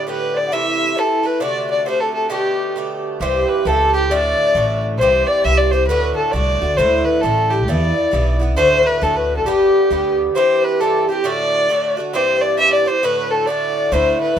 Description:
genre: celtic folk, Celtic polka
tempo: 134 BPM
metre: 2/4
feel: swing 62% on 8ths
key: unclear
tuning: A4 = 438 Hz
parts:
  - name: dark fiddle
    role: melody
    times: 0.0-14.4 s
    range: G4 to E5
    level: -17 LUFS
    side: equal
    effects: none
  - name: hollow wooden flute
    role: second line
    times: 0.0-14.4 s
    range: G4 to F#5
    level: -22 LUFS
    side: left 9 dB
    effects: none
  - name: Irish bouzouki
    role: accompaniment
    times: 0.0-14.4 s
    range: G2 to G4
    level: -21 LUFS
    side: right 3 dB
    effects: none
  - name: upright bass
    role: bass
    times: 3.2-10.3, 13.9-14.4 s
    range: G1 to E2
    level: -21 LUFS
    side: equal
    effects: none
room: light reverb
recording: minimal, uncompressed stereo recording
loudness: -14 LUFS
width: side -9 dB against mid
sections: 0.0-3.2 A section; 3.2-10.4 B section; 10.4-14.4 B section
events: none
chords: 0.0 Gadd9; 0.5 Am; 1.4 D7; 2.3 Gadd9; 3.2 C; 4.1 D; 5.0 C; 5.9 D; 6.8 Dsus2; 7.7 Em; 8.6 D; 9.5 G; 10.4 C; 11.2 D; 12.1 C; 13.0 D

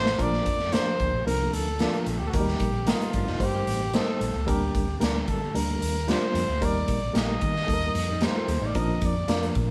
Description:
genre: uptempo 1960s-style soul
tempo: 112 BPM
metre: 4/4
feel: straight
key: Bb major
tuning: A4 = 440 Hz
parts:
  - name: breathy trumpet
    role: melody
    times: 0.0-9.6 s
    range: F4 to Eb5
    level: -32 LUFS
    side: equal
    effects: none
  - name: barky reed electric piano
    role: accompaniment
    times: 0.0-9.7 s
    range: F3 to C5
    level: -32 LUFS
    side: equal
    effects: overdrive, fast tremolo
  - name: vintage muted fingered electric bass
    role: bass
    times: 0.0-9.7 s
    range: F1 to Eb3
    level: -33 LUFS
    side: equal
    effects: none
  - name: raw garage drum kit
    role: drums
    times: 0.1-9.7 s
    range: hi-hat, kick drum, snare drum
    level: -31 LUFS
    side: equal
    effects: none
  - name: electric guitar through a small old amp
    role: stabs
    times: 0.7-9.4 s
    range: F4 to Eb5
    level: -38 LUFS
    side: equal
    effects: none
  - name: archtop guitar, miked and amplified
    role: riff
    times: 3.1-4.3, 8.1-8.9 s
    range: F3 to G4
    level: -39 LUFS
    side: equal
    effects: none
room: moderate large studio reverb, RT60 1.0 s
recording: band playing live in one room, vinyl crackle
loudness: -26 LUFS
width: mono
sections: 0.2-9.7 A section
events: drum fill 0.0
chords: 0.2 Bb; 2.3 Eb; 4.5 Gm/D; 6.6 Eb; 8.8 Bb

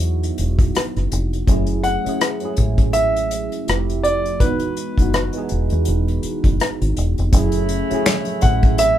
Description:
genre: R&B, neo-soul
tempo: 82 BPM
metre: 4/4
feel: swing 57% on 16ths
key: F# dorian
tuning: A4 = 438 Hz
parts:
  - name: warm concert grand piano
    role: melody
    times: 0.0-9.0 s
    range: B4 to F#5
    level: -20 LUFS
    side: right 1 dB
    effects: none
  - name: tine electric piano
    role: accompaniment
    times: 0.0-9.0 s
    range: E3 to G#4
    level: -24 LUFS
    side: right 2 dB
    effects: phaser
  - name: deep dub fingered electric bass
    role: bass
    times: 0.0-9.0 s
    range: E1 to E2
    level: -21 LUFS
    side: equal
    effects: none
  - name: unplugged drum kit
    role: drums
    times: 0.0-9.0 s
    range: finger snaps, hi-hat, kick drum, rim click, snare drum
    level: -19 LUFS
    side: equal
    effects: none
  - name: warm horn section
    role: stabs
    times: 7.3-9.0 s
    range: C#3 to E4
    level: -28 LUFS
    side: right 1 dB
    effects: none
  - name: congas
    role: percussion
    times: 7.5-9.0 s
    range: none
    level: -36 LUFS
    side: equal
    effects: none
room: moderate small room ambience, RT60 0.5 s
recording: band playing live in one room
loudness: -16 LUFS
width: side -11 dB against mid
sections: 0.0-7.3 A section; 7.3-9.0 B section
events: none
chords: 0.0 Emaj7; 1.5 F#m9; 3.7 Fmaj7; 4.4 Emaj7; 7.3 F#m9

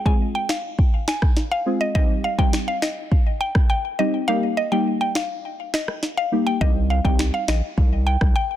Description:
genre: dancehall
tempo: 103 BPM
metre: 4/4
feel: straight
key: C minor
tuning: A4 = 440 Hz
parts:
  - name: mallet-like synth pluck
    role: melody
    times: 0.1-8.4 s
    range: Eb5 to Ab5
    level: -25 LUFS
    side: left 1 dB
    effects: chorus, ping-pong delay
  - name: deep mellow chord stab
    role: accompaniment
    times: 0.1-7.2 s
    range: G3 to Ab4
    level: -23 LUFS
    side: equal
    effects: chorus, sidechain pumping
  - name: afro-pop drum kit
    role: drums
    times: 0.1-8.3 s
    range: finger snaps, kick drum, rim click, snare drum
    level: -20 LUFS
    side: equal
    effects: soft clipping on snare
  - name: round analog bass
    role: bass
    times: 6.6-8.3 s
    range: Bb1 to C2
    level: -21 LUFS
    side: equal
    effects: none
room: little or no reverb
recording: dense, heavily limited modern master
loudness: -19 LUFS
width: side -12 dB against mid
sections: 0.0-8.6 A section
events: kick muted 4.3-6.6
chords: 0.0 Fm; 2.0 Cm; 4.3 Eb; 6.6 Cm

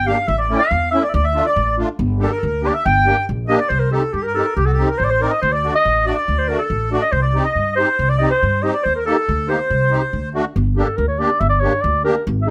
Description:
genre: klezmer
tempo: 140 BPM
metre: 2/4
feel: straight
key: G dorian sharp4, C dorian sharp4 from 3.7 s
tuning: A4 = 441 Hz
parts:
  - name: breathy clarinet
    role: melody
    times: 0.0-12.5 s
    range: G4 to G5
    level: -21 LUFS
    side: equal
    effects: none
  - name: accordion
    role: second line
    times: 0.0-10.3 s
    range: F#4 to G5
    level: -27 LUFS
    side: equal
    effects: none
  - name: upright bass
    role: bass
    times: 0.0-12.5 s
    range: G1 to G2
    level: -23 LUFS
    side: equal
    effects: none
  - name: musette accordion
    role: accompaniment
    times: 0.1-12.5 s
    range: A3 to Bb4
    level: -24 LUFS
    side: equal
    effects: none
room: light reverb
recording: close, detailed microphones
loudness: -18 LUFS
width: mono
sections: 0.0-3.7 A section; 3.7-10.6 B section; 10.6-12.5 C section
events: none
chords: 0.3 A; 1.1 Dm; 2.0 Gm; 3.7 Cm; 5.4 D; 7.1 Cm; 8.8 Eb; 9.7 Cm; 10.1 D7; 10.6 Gm

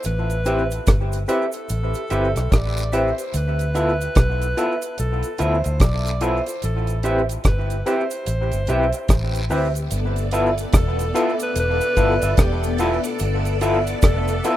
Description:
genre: lovers rock reggae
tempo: 73 BPM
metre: 4/4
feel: swing 62% on 16ths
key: unclear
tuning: A4 = 440 Hz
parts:
  - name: clear alto saxophone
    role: melody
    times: 0.0-14.6 s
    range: G4 to D5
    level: -28 LUFS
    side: equal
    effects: tape echo
  - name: deep reggae drum kit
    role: drums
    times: 0.0-14.6 s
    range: hi-hat, kick drum, rim click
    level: -19 LUFS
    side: equal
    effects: none
  - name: cabasa and guiro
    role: percussion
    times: 0.0-14.6 s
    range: none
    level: -37 LUFS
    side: right 3 dB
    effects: tape echo
  - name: vintage muted fingered electric bass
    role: bass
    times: 0.1-14.4 s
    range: E1 to D2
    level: -23 LUFS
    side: equal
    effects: none
  - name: overdriven tine electric piano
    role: accompaniment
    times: 0.5-14.6 s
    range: B3 to B4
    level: -26 LUFS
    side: left 2 dB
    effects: medium tremolo, tape echo
  - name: electric guitar through a small old amp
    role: stabs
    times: 0.5-14.6 s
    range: F4 to E5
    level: -26 LUFS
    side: right 2 dB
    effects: tape echo
  - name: string machine, full ensemble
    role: second line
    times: 9.9-14.6 s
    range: B3 to D5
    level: -26 LUFS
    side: left 2 dB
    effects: phaser, ensemble chorus, tape echo
room: little or no reverb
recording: rough home demo mix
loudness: -18 LUFS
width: side -13 dB against mid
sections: 0.0-9.9 A section; 9.9-14.6 B section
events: none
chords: 0.1 Am7; 3.3 Dm69; 6.6 Am7; 9.9 G13

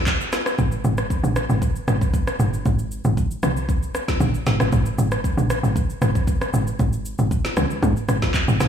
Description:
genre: amapiano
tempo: 116 BPM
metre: 4/4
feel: straight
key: Ab major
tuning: A4 = 440 Hz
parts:
  - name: deep house drum kit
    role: drums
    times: 0.1-8.7 s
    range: handclaps, kick drum, rim click, shaker, snare drum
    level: -22 LUFS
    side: equal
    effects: none
  - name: tight log drum bass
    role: bass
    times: 0.6-8.7 s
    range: G1 to Ab2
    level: -20 LUFS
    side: equal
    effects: none
room: light reverb, digital ambience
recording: small room reverb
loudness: -19 LUFS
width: side -8 dB against mid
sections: 0.0-8.7 A section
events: none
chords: none

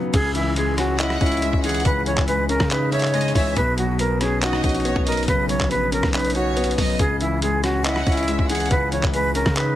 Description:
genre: hip hop, trap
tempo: 140 BPM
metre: 4/4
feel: half-time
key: C# dorian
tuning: A4 = 441 Hz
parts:
  - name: dark concert grand piano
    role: accompaniment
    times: 0.0-9.8 s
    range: B2 to D#5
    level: -24 LUFS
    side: left 3 dB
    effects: none
  - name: jazz flute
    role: melody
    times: 0.1-9.8 s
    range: E4 to C#5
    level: -24 LUFS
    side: right 1 dB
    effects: none
  - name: distorted 808-style bass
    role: bass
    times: 0.1-9.8 s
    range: A#1 to C#3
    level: -25 LUFS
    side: equal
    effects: distortion
  - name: boom bap sampler-style drum kit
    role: drums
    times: 0.1-9.7 s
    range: crash cymbal, handclaps, hi-hat, kick drum, rim click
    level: -24 LUFS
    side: equal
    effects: none
  - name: rich studio violin section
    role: second line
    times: 1.0-8.7 s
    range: C#5 to F#5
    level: -30 LUFS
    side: right 1 dB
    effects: ping-pong delay
room: little or no reverb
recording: heavily compressed radio sound, multiband compression, lossy compression artefacts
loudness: -18 LUFS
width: side -12 dB against mid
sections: 0.1-9.8 A section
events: none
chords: 0.1 C#madd9; 3.6 Badd9; 7.0 C#madd9

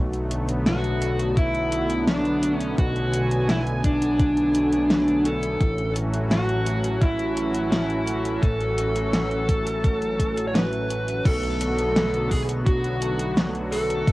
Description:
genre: synthwave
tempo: 85 BPM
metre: 4/4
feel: straight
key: B dorian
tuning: A4 = 441 Hz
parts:
  - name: warm analog pad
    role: sustained chords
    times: 0.0-14.1 s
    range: D3 to G#5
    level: -28 LUFS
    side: equal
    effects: chorus, vintage 12-bit sampler grit, sidechain pumping, cassette tape
  - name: fat analog bass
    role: bass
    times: 0.0-14.1 s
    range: A1 to B1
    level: -28 LUFS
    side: equal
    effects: none
  - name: pop drum kit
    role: drums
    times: 0.1-14.1 s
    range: crash cymbal, hi-hat, snare drum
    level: -26 LUFS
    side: equal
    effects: overdrive, cassette tape
  - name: dark smooth lead guitar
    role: melody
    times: 0.7-14.1 s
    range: D4 to C#5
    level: -24 LUFS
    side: equal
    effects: overdrive, cassette tape, analog delay
  - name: electronic kick drum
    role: drums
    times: 1.4-14.1 s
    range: none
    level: -21 LUFS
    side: equal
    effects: overdrive, cassette tape
  - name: airy dreamy lead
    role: second line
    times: 11.3-14.1 s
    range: F#4 to A4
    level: -32 LUFS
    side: right 2 dB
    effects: chorus, cassette tape
room: wet booth ambience, RT60 0.2 s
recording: home recording on cassette, lossy compression artefacts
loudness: -20 LUFS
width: side -19 dB against mid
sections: 0.0-11.3 A section; 11.3-14.1 B section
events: band accent 10.5-10.9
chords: 0.0 Bm7; 5.6 A6; 11.3 Bm7

